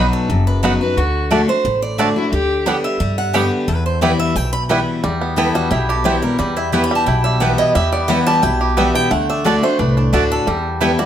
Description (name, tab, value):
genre	bluegrass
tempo	177 BPM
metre	4/4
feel	straight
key	E minor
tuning	A4 = 439 Hz
part	picked steel-string acoustic guitar	accompaniment	0.0-11.1 s	E2 to G4	-19 LUFS	left 2 dB	none
part	bluegrass banjo	arpeggios	0.0-11.1 s	E3 to G4	-22 LUFS	right 2 dB	none
part	mandolin	stabs	0.0-10.9 s	A3 to B5	-20 LUFS	right 4 dB	none
part	upright bass	bass	0.0-10.9 s	F#1 to G2	-21 LUFS	equal	none
part	picked acoustic archtop guitar	melody	0.1-11.1 s	D4 to B5	-21 LUFS	right 2 dB	tape echo
part	dark fiddle	second line	0.8-2.7 s	E4 to B4	-22 LUFS	left 3 dB	none
room	moderate studio reverb, RT60 0.6 s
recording	none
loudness	-14 LUFS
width	side -10 dB against mid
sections	0.0-5.0 A section; 5.0-11.1 B section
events	none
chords	0.0 B; 1.0 D; 2.3 G/D; 3.7 Em; 9.1 D; 10.5 Em